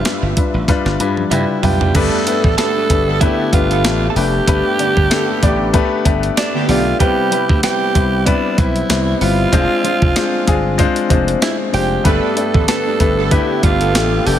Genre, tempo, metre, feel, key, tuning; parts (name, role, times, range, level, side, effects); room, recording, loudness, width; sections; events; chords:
1980s-style pop; 95 BPM; 4/4; swing 55% on 16ths; A4 = 440 Hz
breathy alto saxophone; melody; 0.0-14.4 s; D4 to A4; -20 LUFS; right 4 dB; ping-pong delay
warm concert grand piano; accompaniment; 0.0-14.4 s; G2 to B5; -18 LUFS; left 5 dB
warm analog pad; sustained chords; 0.0-1.9, 12.0-14.4 s; G3 to E5; -29 LUFS; right 3 dB; chorus
clean 12-bit digital drum machine; drums; 0.1-14.4 s; crash cymbal, hi-hat, kick drum, snare drum, tambourine, toms; -17 LUFS; right 1 dB; gated reverb
slap bass; bass; 0.2-14.4 s; F1 to G2; -19 LUFS; right 1 dB
direct-recorded clean electric guitar; second line; 1.3-14.4 s; D5 to A5; -26 LUFS; right 11 dB; spring reverb, ping-pong delay
analog synth brass; stabs; 1.9-6.8, 12.0-13.9 s; D3 to B4; -24 LUFS; right 3 dB; chorus, ping-pong delay
little or no reverb; -13 LUFS; side -10 dB against mid
0.0-1.9 A section; 1.9-14.4 B section
drum fill 0.7-1.9; grand piano fill 0.7-1.9
0.0 G7; 1.9 Gadd9; 7.0 Cmaj7; 9.5 Fm6; 12.1 Gadd9